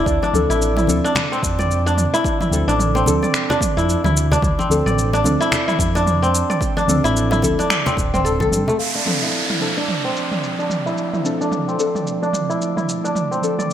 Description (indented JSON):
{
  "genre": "organic downtempo",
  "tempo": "110 BPM",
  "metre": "4/4",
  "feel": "swing 60% on 16ths",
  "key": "D minor",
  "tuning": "A4 = 440 Hz",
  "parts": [
    { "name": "kora", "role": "arpeggios", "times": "0.0-13.7 s", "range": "A3 to D5", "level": "-20 LUFS", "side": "equal", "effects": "low-pass filter, digital delay, shimmer reverb" },
    { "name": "smooth gliding synth bass", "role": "bass", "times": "0.0-8.6 s", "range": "D1 to G2", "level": "-20 LUFS", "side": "equal", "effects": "none" },
    { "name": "electronic kick drum", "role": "drums", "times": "0.1-8.5 s", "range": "none", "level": "-24 LUFS", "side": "equal", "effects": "none" },
    { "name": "organic electronic drum kit", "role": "drums", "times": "0.1-13.7 s", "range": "cabasa, finger snaps, toms", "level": "-24 LUFS", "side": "right 1 dB", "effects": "low-pass filter on perc, low-pass filter on snare, low-pass filter on toms, gated reverb" },
    { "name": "quartz singing bowl", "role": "texture", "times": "0.1-13.7 s", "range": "D5 to F5", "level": "-34 LUFS", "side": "right 4 dB", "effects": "none" },
    { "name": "congas and bongos", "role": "percussion", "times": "0.2-8.8 s", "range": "none", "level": "-28 LUFS", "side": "left 2 dB", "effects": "none" },
    { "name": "muted felt-like synth keys", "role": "accompaniment", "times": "0.3-13.7 s", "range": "F3 to A4", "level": "-23 LUFS", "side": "left 1 dB", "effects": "chorus, phaser, sidechain pumping, digital delay, shimmer reverb" },
    { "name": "warm analog pad", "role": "sustained chords", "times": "8.8-13.7 s", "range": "D3 to F4", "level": "-28 LUFS", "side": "right 1 dB", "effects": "chorus, sidechain pumping" },
    { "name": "downlifter", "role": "sound effects", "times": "8.8-13.2 s", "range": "none", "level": "-25 LUFS", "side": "right 2 dB", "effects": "none" }
  ],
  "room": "moderate plate reverb, RT60 2.1 s",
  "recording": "bright 1980s-style digital production",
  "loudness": "-16 LUFS",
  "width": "side -10 dB against mid",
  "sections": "0.0-8.8 A section; 8.8-13.7 B section",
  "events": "filter sweep on drum 8.8-13.7",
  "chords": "0.0 Dm7",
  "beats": "| 0.06 0.61 1.15 1.70 | 2.25 2.79 3.34 3.88 | 4.43 4.97 5.52 6.06 | 6.61 7.15 7.70 8.24 | 8.79 9.34 9.88 10.43 | 10.97 11.52 12.06 12.61 | 13.15 13.70"
}